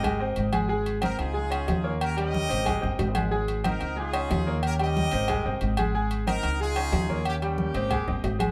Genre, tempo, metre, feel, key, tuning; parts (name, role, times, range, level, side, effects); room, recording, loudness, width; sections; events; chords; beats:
latin, salsa; 183 BPM; 4/4; straight; Ab major; A4 = 441 Hz
brilliant horn section; melody; 0.0-8.4 s; Bb3 to Eb5; -34 LUFS; equal
bright concert grand piano; accompaniment; 0.0-8.5 s; G3 to Ab5; -33 LUFS; equal
upright bass; bass; 0.0-8.5 s; G1 to Eb2; -31 LUFS; equal
agogo bells and timbales; percussion; 0.0-8.5 s; -35 LUFS; equal
congas; percussion; 0.0-8.5 s; -35 LUFS; equal
wet small room reverb, RT60 0.5 s; band playing live in one room; -27 LUFS; mono
0.0-8.5 A section
0.0 Abadd9; 1.4 Dbadd9; 2.0 Eb7; 2.7 Abadd9; 4.0 Dbadd9; 4.6 Eb7; 5.3 Abadd9; 6.6 Dbadd9; 7.3 Eb7; 7.9 Abadd9
0.04 0.37 | 0.69 1.02 1.35 1.68 | 2.01 2.34 2.66 2.99 | 3.32 3.65 3.98 4.30 | 4.63 4.96 5.29 5.62 | 5.95 6.27 6.60 6.93 | 7.26 7.59 7.91 8.24